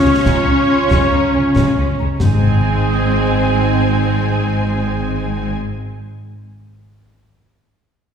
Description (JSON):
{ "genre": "cinematic, heroic adventure film score", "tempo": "94 BPM (dotted quarters)", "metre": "12/8", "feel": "straight", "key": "Ab major", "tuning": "A4 = 439 Hz", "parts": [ { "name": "warm symphonic violin section", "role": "melody", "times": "0.0-5.5 s", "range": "Db5 to Ab5", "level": "-25 LUFS", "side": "left 2 dB", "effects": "none" }, { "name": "dark clarinet", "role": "second line", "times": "0.0-5.5 s", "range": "F4 to Ab4", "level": "-33 LUFS", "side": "left 2 dB", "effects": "none" }, { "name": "flute section", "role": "second line", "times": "0.0-5.5 s", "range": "Ab5 to Db6", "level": "-29 LUFS", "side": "right 3 dB", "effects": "none" }, { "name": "warm oboe", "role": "second line", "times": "0.0-5.5 s", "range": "C5 to F5", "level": "-28 LUFS", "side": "right 1 dB", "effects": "none" }, { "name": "warm symphonic violin section", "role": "second line", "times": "0.0-5.5 s", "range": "Ab3 to Db4", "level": "-27 LUFS", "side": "left 2 dB", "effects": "none" }, { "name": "rich symphonic viola section", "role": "accompaniment", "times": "0.0-5.5 s", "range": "C4 to Db4", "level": "-23 LUFS", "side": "equal", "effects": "none" }, { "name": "mellow French horn section", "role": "sustained chords", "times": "0.0-5.5 s", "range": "C4 to F4", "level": "-23 LUFS", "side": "left 1 dB", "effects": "none" }, { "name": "mellow trumpet section", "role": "stabs", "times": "0.0-5.5 s", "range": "Ab4 to Db5", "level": "-25 LUFS", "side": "right 2 dB", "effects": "none" }, { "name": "clear symphonic cello section", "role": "bass", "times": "0.0-5.5 s", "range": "Ab3 to Db4", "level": "-21 LUFS", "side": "equal", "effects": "none" }, { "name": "rich symphonic double bass section", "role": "bass", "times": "0.0-5.5 s", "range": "Ab1 to Db2", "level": "-19 LUFS", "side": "right 2 dB", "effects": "none" }, { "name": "concert snare drum, concert bass drum and concert toms", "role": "drums", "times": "0.3-2.3 s", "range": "none", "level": "-21 LUFS", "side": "left 1 dB", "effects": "none" }, { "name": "timpani", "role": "percussion", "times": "2.2-5.9 s", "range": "Ab2", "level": "-19 LUFS", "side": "left 1 dB", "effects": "none" } ], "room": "wet scoring stage reverb, RT60 1.8 s", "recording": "heard from further back in the room", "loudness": "-13 LUFS", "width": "side -7 dB against mid", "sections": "0.0-2.2 A section; 2.2-4.8 B section", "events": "none", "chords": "0.0 Db; 2.2 Ab", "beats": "0.25 0.90 1.55 | 2.21 2.85 3.48 4.12" }